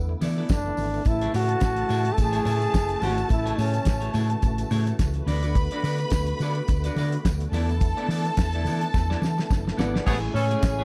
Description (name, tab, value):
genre	disco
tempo	107 BPM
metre	4/4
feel	swing 56% on 16ths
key	A major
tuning	A4 = 440 Hz
part	clear trombone	melody	0.0-4.2, 9.8-10.8 s	B3 to A4	-30 LUFS	equal	none
part	tonewheel organ	sustained chords	0.0-10.8 s	C#3 to F#4	-38 LUFS	equal	overdrive, chorus vibrato, slow rotary speaker
part	hollow-body short-scale fingered electric bass	bass	0.0-10.8 s	F#1 to E3	-29 LUFS	equal	none
part	semi-hollow electric guitar	accompaniment	0.1-10.8 s	A3 to D5	-36 LUFS	equal	none
part	damped 70s drum kit	drums	0.2-10.8 s	crash cymbal, hi-hat, kick drum, snare drum	-28 LUFS	equal	none
part	congas	percussion	0.2-10.8 s	none	-41 LUFS	equal	none
part	tambourine	percussion	0.2-10.8 s	none	-50 LUFS	equal	none
part	warm studio string section	second line	1.1-10.8 s	A3 to B5	-34 LUFS	equal	none
part	clear horn section	stabs	10.1-10.8 s	E3 to C#5	-36 LUFS	equal	none
room	little or no reverb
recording	dark, warm production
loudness	-24 LUFS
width	mono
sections	0.0-1.1 A section; 1.1-10.1 B section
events	drum fill 8.9-10.1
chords	0.0 E7sus4; 1.1 Amaj7; 5.3 D6; 7.5 E7sus4; 10.1 Amaj7